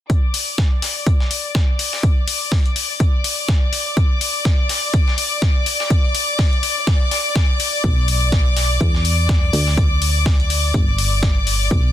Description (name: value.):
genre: piano house.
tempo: 124 BPM.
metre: 4/4.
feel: swing 57% on 16ths.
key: unclear.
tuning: A4 = 440 Hz.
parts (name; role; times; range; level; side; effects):
clear studio violin section; sustained chords; 0.1-11.9 s; D5 to D6; -23 LUFS; left 3 dB; sidechain pumping, low-pass filter.
dusty soul sampler-style drum kit; drums; 0.1-11.8 s; hi-hat, snare drum; -29 LUFS; left 1 dB; sidechain pumping on hats, high-pass filter on hats, high-pass filter on snare.
electronic kick drum; drums; 0.1-11.8 s; none; -16 LUFS; equal; overdrive.
electronic hi-hat; drums; 0.3-11.6 s; none; -22 LUFS; left 6 dB; overdrive.
solid FM bass; bass; 7.8-11.9 s; G1 to E2; -19 LUFS; equal; sidechain pumping.
room: digital ambience.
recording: dense, heavily limited modern master.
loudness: -15 LUFS.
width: side -12 dB against mid.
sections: 0.1-11.9 A section.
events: none.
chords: 0.1 N.C.; 7.8 Bm; 8.8 Dsus2/E; 9.5 N.C.; 10.7 G5.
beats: | 0.10 0.58 1.07 1.55 | 2.03 2.52 3.00 3.48 | 3.97 4.45 4.94 5.42 | 5.90 6.39 6.87 7.36 | 7.84 8.32 8.81 9.29 | 9.78 10.26 10.74 11.23 | 11.71.